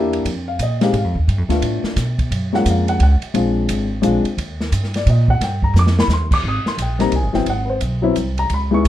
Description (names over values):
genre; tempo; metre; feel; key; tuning
jazz, small-group swing and bop; 175 BPM; 3/4; swing 63% on 8ths; Eb major; A4 = 440 Hz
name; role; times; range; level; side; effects
dark baby grand piano; accompaniment; 0.0-8.9 s; Gb3 to Eb6; -19 LUFS; left 2 dB; none
upright bass; bass; 0.0-8.9 s; G1 to B2; -18 LUFS; right 1 dB; none
open jazz drum kit; drums; 0.1-8.9 s; crash cymbal, hi-hat, kick drum, ride cymbal, snare drum; -24 LUFS; equal; none
room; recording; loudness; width
moderate studio reverb, RT60 0.6 s; dark, warm production; -15 LUFS; side -12 dB against mid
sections
0.0-6.4 A section; 6.4-8.9 A section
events
drum fill 5.7-6.1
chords
0.3 Fm7; 1.3 G9 (rootless); 2.3 Gbmaj7; 3.3 Bb7; 4.4 Ebadd9; 6.4 Abmaj9; 7.5 Ab7#9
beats
| 0.26 0.60 0.94 | 1.28 1.62 1.97 | 2.31 2.65 3.00 | 3.34 3.68 4.02 | 4.37 4.71 5.05 | 5.40 5.74 6.09 | 6.43 6.78 7.12 | 7.47 7.81 8.16 | 8.50 8.85